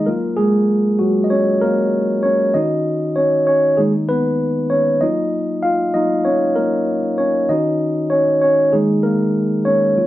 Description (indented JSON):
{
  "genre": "soul",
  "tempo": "97 BPM",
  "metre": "4/4",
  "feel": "swing 58% on 16ths",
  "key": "F# major",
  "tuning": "A4 = 440 Hz",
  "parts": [
    { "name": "mellow tine electric piano", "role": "solo", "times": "0.0-10.1 s", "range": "D#3 to E#5", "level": "-14 LUFS", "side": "equal", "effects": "none" }
  ],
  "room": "moderate large studio reverb, RT60 1.0 s",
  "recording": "band playing live in one room",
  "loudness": "-14 LUFS",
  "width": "side -14 dB against mid",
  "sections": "0.0-10.1 A section",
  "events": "tine electric piano solo 0.0-10.1",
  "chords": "0.1 F#maj9; 2.6 D#m7; 3.8 Bmaj9/D#; 5.0 F#maj7; 7.5 D#m7; 8.7 D#7sus4"
}